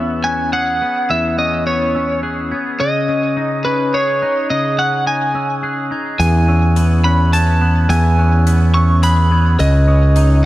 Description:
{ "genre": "post-rock", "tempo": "106 BPM", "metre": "3/4", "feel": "straight", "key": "E major", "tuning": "A4 = 440 Hz", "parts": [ { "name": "lightly driven lead guitar", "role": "melody", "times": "0.0-10.5 s", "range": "B4 to C#6", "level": "-18 LUFS", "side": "equal", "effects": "tape echo" }, { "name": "glockenspiel with rubber mallets", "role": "arpeggios", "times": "0.0-10.4 s", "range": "D#6 to G#6", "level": "-26 LUFS", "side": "right 5 dB", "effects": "tape echo" }, { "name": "twangy electric guitar", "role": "arpeggios", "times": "0.0-10.5 s", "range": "E2 to G#4", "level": "-20 LUFS", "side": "left 2 dB", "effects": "analog chorus, tape echo" }, { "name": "growling picked electric bass", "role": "bass", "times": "6.2-10.5 s", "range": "C#2 to E2", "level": "-12 LUFS", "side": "equal", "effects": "overdrive" }, { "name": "hi-hat", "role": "drums", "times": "6.2-10.3 s", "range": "none", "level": "-34 LUFS", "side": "left 2 dB", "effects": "none" } ], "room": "studio reverb", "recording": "dark, warm production", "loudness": "-13 LUFS", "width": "side -16 dB against mid", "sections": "0.0-10.5 A section", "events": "none", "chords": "0.0 E6; 2.8 C#sus2; 6.2 E6; 9.6 C#sus2", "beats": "0.53 | 1.10 1.67 2.23 | 2.80 3.37 3.94 | 4.50 5.07 5.64 | 6.21 6.77 7.34 | 7.90 8.47 9.03 | 9.60 10.16" }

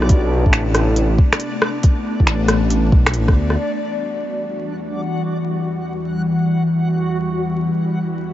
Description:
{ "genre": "future garage", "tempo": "138 BPM", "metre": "4/4", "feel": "swing 67% on 16ths", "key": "E minor", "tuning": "A4 = 439 Hz", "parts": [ { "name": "ethereal airy pad", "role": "sustained chords", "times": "0.0-8.3 s", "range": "E2 to F#4", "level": "-21 LUFS", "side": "left 1 dB", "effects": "ensemble chorus, built-in reverb, sidechain pumping" }, { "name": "swelling detuned saw bass", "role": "bass", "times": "0.0-3.6 s", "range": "A1 to D2", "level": "-17 LUFS", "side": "equal", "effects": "tube saturation, sidechain pumping" }, { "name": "organic electronic drum kit", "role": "drums", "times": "0.0-3.6 s", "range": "finger snaps, hi-hat, rim click", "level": "-22 LUFS", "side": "equal", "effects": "low-pass filter on snare, low-pass filter on hats, low-pass filter on room" }, { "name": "backwards swelling texture", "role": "texture", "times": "0.0-8.3 s", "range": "D4 to F#5", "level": "-27 LUFS", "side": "left 1 dB", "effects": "built-in reverb" }, { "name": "electronic kick drum", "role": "drums", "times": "0.1-3.3 s", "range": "none", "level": "-13 LUFS", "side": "equal", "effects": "none" } ], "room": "moderate huge ambient reverb, RT60 6.5 s", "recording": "vinyl crackle, nothing above 7.6 kHz", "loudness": "-16 LUFS", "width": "side -13 dB against mid", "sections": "0.0-3.6 A section; 3.6-8.3 B section", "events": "none", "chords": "0.1 Bm7; 3.6 Emadd9", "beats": "| 0.10 0.53 0.97 1.40 | 1.83 2.27 2.71 3.14 | 3.57 4.01 4.44 4.88 | 5.31 5.75 6.18 6.62 | 7.05 7.49 7.92" }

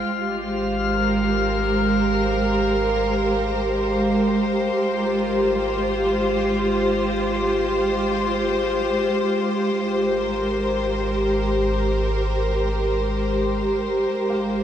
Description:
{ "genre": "ambient", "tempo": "free time", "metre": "none", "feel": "none", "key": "Ab major", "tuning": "A4 = 440 Hz", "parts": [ { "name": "dark studio string section", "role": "sustained chords", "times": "0.0-14.6 s", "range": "Ab3 to C5", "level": "-20 LUFS", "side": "equal", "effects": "shimmer reverb" }, { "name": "warm sub bass", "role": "bass", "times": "0.0-14.6 s", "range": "Ab1", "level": "-29 LUFS", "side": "equal", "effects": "none" }, { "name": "drifting glass-harmonics texture", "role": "texture", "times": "0.0-9.4 s", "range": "F5", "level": "-29 LUFS", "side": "left 3 dB", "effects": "chorus, built-in reverb, shimmer reverb" }, { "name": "felt-muted upright piano", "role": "arpeggios", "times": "10.1-14.6 s", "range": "F5", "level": "-45 LUFS", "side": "equal", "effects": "none" } ], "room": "wet plate reverb, RT60 2.5 s", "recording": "echo-heavy mix", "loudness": "-19 LUFS", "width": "side -9 dB against mid", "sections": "0.0-9.4 A section; 9.4-14.6 B section", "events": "fade-out on sub bass 0.0-9.4", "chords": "0.0 Abmaj9", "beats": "free time" }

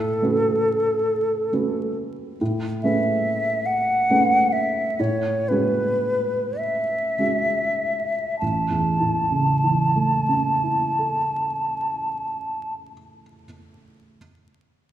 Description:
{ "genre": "classical, impressionist duo for flute and grand piano", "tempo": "31-48 BPM (dotted quarters)", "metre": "6/8", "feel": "rubato", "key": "A major", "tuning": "A4 = 441 Hz", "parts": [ { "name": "hollow concert flute", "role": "melody", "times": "0.0-12.7 s", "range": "A4 to A5", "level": "-21 LUFS", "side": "equal", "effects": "none" }, { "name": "dark baby grand piano", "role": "accompaniment", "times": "0.0-14.2 s", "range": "A1 to B4", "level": "-25 LUFS", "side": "right 2 dB", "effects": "none" } ], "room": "moderate concert hall reverb, RT60 1.9 s", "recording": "minimal, uncompressed stereo recording, vinyl crackle", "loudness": "-20 LUFS", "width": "side -11 dB against mid", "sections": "0.0-2.4 A section; 2.4-8.4 B section; 8.4-12.0 C section", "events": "slowing down 1.1-8.4", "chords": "0.0 A69; 2.4 Amaj9; 5.0 F#m9/A; 8.4 A", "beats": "1.07 | 2.40 3.66 | 4.98 6.59 | 8.41 10.20" }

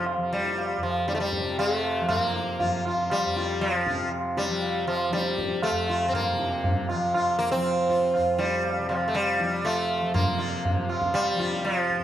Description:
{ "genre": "indian classical, Hindustani", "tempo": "119 BPM", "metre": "4/4", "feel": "straight", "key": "F major", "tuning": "A4 = 441 Hz", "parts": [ { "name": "sitar", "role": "melody", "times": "0.0-12.0 s", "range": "F3 to F4", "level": "-26 LUFS", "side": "equal", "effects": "slapback echo" }, { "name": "tanpura", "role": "drone", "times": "0.0-12.0 s", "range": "F2 to F3", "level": "-32 LUFS", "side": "left 2 dB", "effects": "none" }, { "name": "tabla", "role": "percussion", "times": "0.1-12.0 s", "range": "none", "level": "-28 LUFS", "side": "right 2 dB", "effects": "none" } ], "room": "light reverb", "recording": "close, detailed microphones", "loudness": "-23 LUFS", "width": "side -11 dB against mid", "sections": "0.0-10.1 A section; 10.1-12.0 B section", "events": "none", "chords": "none", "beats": "| 0.07 0.58 1.08 1.59 | 2.10 2.60 3.11 3.61 | 4.12 4.62 5.12 5.63 | 6.13 6.63 7.14 7.64 | 8.14 8.64 9.15 9.65 | 10.15 10.65 11.15 11.65" }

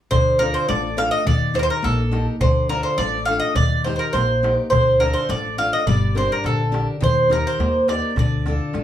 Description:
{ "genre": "greek folk, Greek bouzouki band", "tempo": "104 BPM", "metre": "2/4", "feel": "straight", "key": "D phrygian", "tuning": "A4 = 440 Hz", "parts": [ { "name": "Greek bouzouki", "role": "melody", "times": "0.1-8.8 s", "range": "A4 to F5", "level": "-20 LUFS", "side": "right 1 dB", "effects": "none" }, { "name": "picked steel-string acoustic guitar", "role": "accompaniment", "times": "0.1-8.8 s", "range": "D3 to Bb4", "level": "-25 LUFS", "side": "left 3 dB", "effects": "none" }, { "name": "upright bass", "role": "bass", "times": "0.1-8.8 s", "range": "G1 to Eb2", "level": "-23 LUFS", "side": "equal", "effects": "none" }, { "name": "darbuka", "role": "percussion", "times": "0.1-8.8 s", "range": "none", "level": "-24 LUFS", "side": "left 1 dB", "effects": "none" } ], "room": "moderate small room ambience, RT60 0.5 s", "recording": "small room ambience", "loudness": "-17 LUFS", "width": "side -11 dB against mid", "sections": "0.1-8.8 A section", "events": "none", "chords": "0.1 Dm; 1.3 Eb; 2.4 Dm; 3.6 Eb; 4.7 Dm; 5.9 Gm; 7.0 Eb; 8.2 Dm", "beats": "| 0.12 0.69 | 1.27 1.84 | 2.42 2.99 | 3.57 4.14 | 4.72 5.29 | 5.87 6.45 | 7.02 7.60 | 8.17 8.75" }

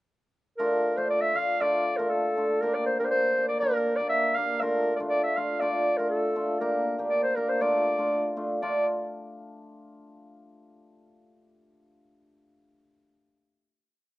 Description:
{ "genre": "klezmer", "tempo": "119 BPM", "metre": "2/4", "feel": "straight", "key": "D minor", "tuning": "A4 = 440 Hz", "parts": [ { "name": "mellow clarinet", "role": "melody", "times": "0.6-8.9 s", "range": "A4 to F5", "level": "-26 LUFS", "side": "equal", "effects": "none" }, { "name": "cimbalom", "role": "accompaniment", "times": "0.6-8.9 s", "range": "A3 to G4", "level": "-28 LUFS", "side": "equal", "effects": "slapback echo" } ], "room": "little or no reverb", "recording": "recorded outdoors, with no room sound, nothing above 10.9 kHz", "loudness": "-24 LUFS", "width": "side -17 dB against mid", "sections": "0.6-8.6 A section; 8.6-9.6 final chord", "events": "none", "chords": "0.6 Dm; 2.6 Gm; 4.6 Dm; 6.6 Gm; 7.6 Dm", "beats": "| 0.60 1.10 | 1.61 2.11 | 2.62 3.12 | 3.62 4.12 | 4.63 5.13 | 5.63 6.13 | 6.63 7.13 | 7.64 8.14 | 8.64" }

